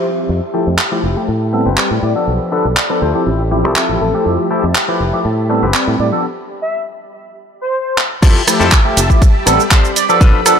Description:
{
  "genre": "filtered disco house",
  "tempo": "121 BPM",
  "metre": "4/4",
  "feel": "straight",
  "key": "A minor",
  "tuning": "A4 = 442 Hz",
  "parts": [
    { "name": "analog synth brass", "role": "melody", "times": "0.0-10.2 s", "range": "A4 to E5", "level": "-22 LUFS", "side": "left 1 dB", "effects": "chorus, sidechain pumping, low-pass filter, digital delay" },
    { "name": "barky tine electric piano", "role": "accompaniment", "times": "0.0-10.6 s", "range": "F3 to B5", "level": "-17 LUFS", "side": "right 1 dB", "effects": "overdrive, phaser, vintage 12-bit sampler grit, sidechain pumping, low-pass filter" },
    { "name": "string machine, full ensemble", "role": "sustained chords", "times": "0.0-10.6 s", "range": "G4 to C6", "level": "-24 LUFS", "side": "equal", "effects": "ensemble chorus, sidechain pumping, low-pass filter" },
    { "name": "semi-hollow electric guitar", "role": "riff", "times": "0.0-10.4 s", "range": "C4 to C5", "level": "-21 LUFS", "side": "left 6 dB", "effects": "sidechain pumping, low-pass filter" },
    { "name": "fingered electric bass", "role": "bass", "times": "0.3-10.3 s", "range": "F1 to A2", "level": "-17 LUFS", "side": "equal", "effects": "sidechain pumping, low-pass filter" },
    { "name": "house drum kit", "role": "drums", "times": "0.8-10.6 s", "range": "crash cymbal, handclaps, hi-hat, ride cymbal, rim click, shaker", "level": "-16 LUFS", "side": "right 1 dB", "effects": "sidechain pumping on cymbals, sidechain pumping on perc, sidechain pumping on hats" },
    { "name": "electronic kick drum", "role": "drums", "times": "8.2-10.3 s", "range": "none", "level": "-10 LUFS", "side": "equal", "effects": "none" }
  ],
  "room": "light reverb",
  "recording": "none",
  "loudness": "-12 LUFS",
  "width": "side -7 dB against mid",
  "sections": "0.0-8.2 A section; 8.2-10.6 B section",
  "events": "filter sweep 0.0-8.2; break 6.2-8.2; drum fill 8.0; drop 8.2-10.6",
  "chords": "0.3 Fmaj9; 1.3 Am9; 2.3 Bm7b5; 3.0 Dm11 (rootless); 4.3 Fmaj9; 5.3 Am9; 6.2 N.C.; 8.2 Fmaj9; 9.2 Am9",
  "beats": "| 0.29 0.79 1.28 1.78 | 2.28 2.77 3.27 3.76 | 4.26 4.75 5.25 5.75 | 6.24 6.74 7.23 7.73 | 8.23 8.72 9.22 9.71 | 10.21"
}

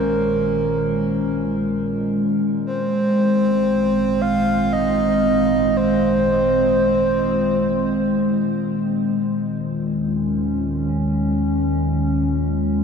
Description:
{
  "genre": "ambient",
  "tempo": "free time",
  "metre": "none",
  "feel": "none",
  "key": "unclear",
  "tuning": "A4 = 440 Hz",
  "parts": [
    { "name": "breathy flute-like synth lead", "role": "melody", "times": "0.0-8.3 s", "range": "Bb4 to F5", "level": "-22 LUFS", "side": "right 1 dB", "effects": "chorus, tape echo" },
    { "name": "warbly tape-like pad", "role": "sustained chords", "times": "0.0-12.8 s", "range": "Bb2 to Db4", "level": "-19 LUFS", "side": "equal", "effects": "chorus, built-in reverb" },
    { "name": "deep rumbling drone", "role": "bass", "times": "0.0-12.8 s", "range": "Ab1 to Eb2", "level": "-30 LUFS", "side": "equal", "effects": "built-in reverb" }
  ],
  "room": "wet huge ambient reverb, RT60 7.4 s",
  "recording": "none",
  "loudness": "-17 LUFS",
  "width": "side -6 dB against mid",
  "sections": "0.0-12.8 A section",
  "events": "fade-in on synth drone 0.0-12.8",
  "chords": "0.0 Bbm7; 2.6 Ab; 8.8 Eb7sus4",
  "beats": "free time"
}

